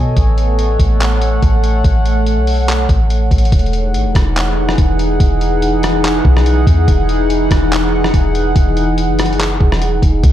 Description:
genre	hip hop, atmospheric cloud-rap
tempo	143 BPM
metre	4/4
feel	half-time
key	E major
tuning	A4 = 440 Hz
part	warbly tape-like pad	sustained chords	0.0-10.3 s	E3 to G#5	-17 LUFS	equal	chorus, built-in reverb, sidechain pumping
part	soft 808-style bass	bass	0.0-10.3 s	E1 to B2	-15 LUFS	equal	none
part	lo-fi sampler-style drum kit	drums	0.2-10.3 s	handclaps, hi-hat, kick drum, rim click	-15 LUFS	equal	none
room	little or no reverb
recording	none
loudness	-11 LUFS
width	side -12 dB against mid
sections	0.0-3.5 A section; 3.5-10.3 B section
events	none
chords	0.2 A6; 3.5 Emaj9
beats	| 0.17 0.59 1.01 1.43 | 1.84 2.26 2.68 3.10 | 3.52 3.94 4.36 4.78 | 5.20 5.62 6.04 6.46 | 6.88 7.30 7.72 8.14 | 8.56 8.98 9.40 9.82 | 10.24

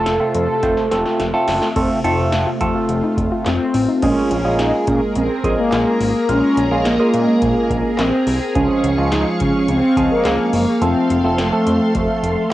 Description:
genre	synth-pop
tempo	106 BPM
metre	4/4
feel	straight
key	Bb minor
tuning	A4 = 440 Hz
part	mellow synth brass	melody	0.0-12.5 s	A3 to A4	-18 LUFS	equal	chorus, cassette tape, plate reverb
part	barky tine electric piano	accompaniment	0.0-12.4 s	F3 to C5	-19 LUFS	right 1 dB	phaser, cassette tape, plate reverb
part	string machine, violas	sustained chords	0.0-12.5 s	C3 to Db6	-26 LUFS	left 1 dB	phaser, ensemble chorus, cassette tape, plate reverb
part	fat analog bass	bass	0.0-12.4 s	F1 to Db3	-22 LUFS	left 1 dB	none
part	electro analog drum machine	drums	0.1-12.4 s	crash cymbal, handclaps, hi-hat, kick drum, snare drum	-26 LUFS	left 1 dB	cassette tape
part	soft round pluck	arpeggios	1.8-4.0 s	C4 to F4	-27 LUFS	left 2 dB	chorus, cassette tape, tape echo, plate reverb
room	moderate studio reverb, RT60 0.5 s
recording	home recording on cassette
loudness	-15 LUFS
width	side -15 dB against mid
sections	0.0-1.8 A section; 1.8-4.0 B section; 4.0-12.5 C section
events	drum fill 0.6-1.8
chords	0.0 F; 4.0 Bbm7; 8.6 Db; 10.8 F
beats	0.06 0.63 1.19 | 1.76 2.33 2.89 3.46 | 4.02 4.59 5.16 5.72 | 6.29 6.85 7.42 7.99 | 8.55 9.12 9.69 10.25 | 10.82 11.38 11.95 12.52

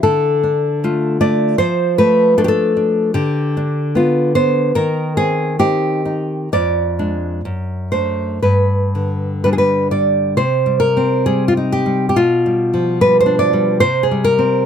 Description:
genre	romantic piece for solo classical guitar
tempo	57-79 BPM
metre	2/4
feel	rubato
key	C minor from 3.2 s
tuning	A4 = 439 Hz
part	nylon-string guitar	solo	0.0-14.7 s	F2 to D5	-14 LUFS	equal	none
room	light reverb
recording	close, detailed microphones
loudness	-14 LUFS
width	side -8 dB against mid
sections	0.0-10.4 A section; 10.4-14.7 B section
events	none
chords	0.0 Dm; 1.6 Dm/F; 3.2 G7/D; 4.8 Cm/Eb; 6.5 Ddim/F; 7.4 D7/F#; 8.4 G; 10.4 Cm; 12.2 G7/B; 13.8 C5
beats	| 0.04 0.82 | 1.58 2.35 | 3.15 3.96 | 4.76 5.60 | 6.52 7.43 | 8.42 9.43 | 10.38 11.27 | 12.16 13.00 | 13.83

